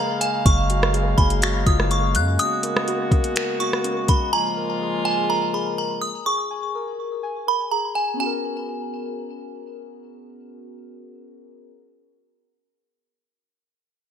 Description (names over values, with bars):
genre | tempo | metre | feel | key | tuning
hip hop, atmospheric cloud-rap | 124 BPM | 4/4 | half-time | G# dorian | A4 = 440 Hz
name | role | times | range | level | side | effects
delicate synth tine bell | melody | 0.0-9.6 s | G#5 to F#6 | -24 LUFS | right 2 dB | chorus, phaser, ping-pong delay
warm woodwind section | sustained chords | 0.0-6.2 s | C#3 to E#5 | -26 LUFS | left 1 dB | sidechain pumping
muted felt-like synth keys | arpeggios | 0.0-11.8 s | B3 to G#5 | -30 LUFS | left 3 dB | chorus, phaser, ping-pong delay
smooth R&B drum kit | drums | 0.2-4.2 s | finger snaps, hi-hat, kick drum, rim click | -21 LUFS | equal | gated reverb
long sustained 808-style bass | bass | 0.5-2.4 s | F#1 to F#2 | -21 LUFS | equal | none
room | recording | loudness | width
light reverb | bright 1980s-style digital production | -20 LUFS | side -8 dB against mid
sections
0.0-8.2 A section; 8.2-12.1 B section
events
break 0.0-0.5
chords
0.5 F#maj9; 2.4 G#m11; 4.3 A#m7; 8.2 G#m11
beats
| 0.46 0.94 1.43 1.91 | 2.39 2.88 3.36 3.84 | 4.33 4.81 5.30 5.78 | 6.26 6.75 7.23 7.71 | 8.20 8.68 9.17 9.65 | 10.13 10.62 11.10 11.59